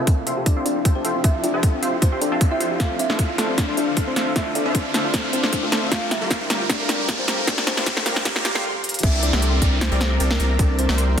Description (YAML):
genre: future bass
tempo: 154 BPM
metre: 4/4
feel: swing 53% on 16ths, half-time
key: unclear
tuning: A4 = 440 Hz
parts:
  - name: kalimba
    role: melody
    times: 0.0-10.9 s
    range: G3 to F5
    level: -27 LUFS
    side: left 2 dB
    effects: sidechain pumping, low-pass filter, digital delay
  - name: shimmering ambient pad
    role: sustained chords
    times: 0.0-8.6 s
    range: D3 to Bb4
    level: -34 LUFS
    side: equal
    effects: chorus, built-in reverb, sidechain pumping
  - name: thumb-piano-like synth pluck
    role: arpeggios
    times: 0.0-11.2 s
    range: C4 to Bb4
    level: -31 LUFS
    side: right 2 dB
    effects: chorus, sidechain pumping, dub echo
  - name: supersaw stab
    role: riff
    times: 0.0-11.2 s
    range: G3 to C6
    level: -26 LUFS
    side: equal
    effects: sidechain pumping, low-pass filter
  - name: saturated sub bass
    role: bass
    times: 0.0-11.2 s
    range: F1 to F2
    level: -21 LUFS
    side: equal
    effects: sidechain pumping, high-pass filter
  - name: riser and downlifter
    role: sound effects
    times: 0.0-11.2 s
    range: none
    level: -29 LUFS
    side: equal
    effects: none
  - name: big-room dance drum kit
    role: drums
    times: 0.1-11.2 s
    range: crash cymbal, hi-hat, snare drum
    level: -24 LUFS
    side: equal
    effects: none
  - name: electronic kick drum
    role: drums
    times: 0.1-11.2 s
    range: none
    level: -20 LUFS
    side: equal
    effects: none
room: moderate lush hall reverb, RT60 1.6 s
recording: dense, heavily limited modern master, high-pass filter, faint mains hum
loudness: -18 LUFS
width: side -8 dB against mid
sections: 0.0-9.0 A section; 9.0-11.2 B section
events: build-up 0.0-9.0; riser 0.0-8.6; filter sweep on supersaw synth 0.0-9.0; filter sweep on kalimba 0.0-9.0; filter sweep on synth arpeggio sound 0.0-9.0; filter sweep 0.0-9.0; drum fill 2.8-8.6, 8.8; stop 8.6-9.0; drop 9.0-11.2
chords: 0.0 Fmaj9; 2.8 Dm9; 5.9 Gm9; 9.0 C13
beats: 0.07 0.46 0.85 | 1.24 1.63 2.02 2.41 | 2.80 3.19 3.58 3.97 | 4.36 4.75 5.14 5.53 | 5.92 6.31 6.70 7.08 | 7.47 7.87 8.25 8.64 | 9.03 9.42 9.81 10.20 | 10.59 10.98